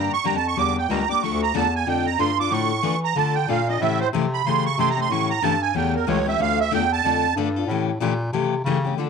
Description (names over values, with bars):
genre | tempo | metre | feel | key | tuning
acoustic string swing (jazz manouche) | 185 BPM | 4/4 | swing 59% on 8ths | D harmonic minor | A4 = 439 Hz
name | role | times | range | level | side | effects
musette accordion | melody | 0.0-7.3 s | Bb4 to D6 | -22 LUFS | right 9 dB | none
picked steel-string acoustic guitar | accompaniment | 0.0-9.1 s | C#3 to A4 | -25 LUFS | left 12 dB | none
clear bass clarinet | bass | 0.0-9.1 s | C#2 to E3 | -25 LUFS | left 1 dB | none
room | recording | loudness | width
moderate spring reverb, RT60 1.2 s, small room ambience | 1960s-style stereo with parts hard left and right | -19 LUFS | side -5 dB against mid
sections
0.0-9.0 A section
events
accordion solo 0.0-9.0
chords
0.0 Dm; 3.8 A7#9; 6.4 Dm; 7.7 A7#9